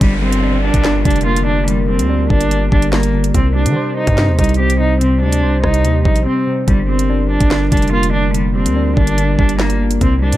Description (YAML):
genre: hip hop, drill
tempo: 144 BPM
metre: 4/4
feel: half-time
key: G minor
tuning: A4 = 440 Hz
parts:
  - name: clear cello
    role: melody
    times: 0.0-10.4 s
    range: G3 to G4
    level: -18 LUFS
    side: right 1 dB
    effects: low-pass filter, dub echo
  - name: soft electric-piano-like synth keys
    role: accompaniment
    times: 0.0-10.4 s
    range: C3 to C5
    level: -19 LUFS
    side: equal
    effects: chorus, low-pass filter, dub echo
  - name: glass harmonica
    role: sustained chords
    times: 0.2-10.4 s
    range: G3 to C5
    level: -27 LUFS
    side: left 2 dB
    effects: none
  - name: distorted 808-style bass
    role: bass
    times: 0.0-10.4 s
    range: F1 to Eb3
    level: -16 LUFS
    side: equal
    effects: distortion
  - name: drill drum kit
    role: drums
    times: 0.0-10.4 s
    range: handclaps, hi-hat, kick drum, rim click, snare drum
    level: -16 LUFS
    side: equal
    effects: none
  - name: downlifter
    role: sound effects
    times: 0.0-3.3 s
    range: none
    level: -28 LUFS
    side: equal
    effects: none
room: little or no reverb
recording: echo-heavy mix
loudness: -12 LUFS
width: side -14 dB against mid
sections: 0.0-10.4 A section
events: break 6.3-6.7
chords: 0.0 Gm7; 3.3 Cm; 6.7 Gm7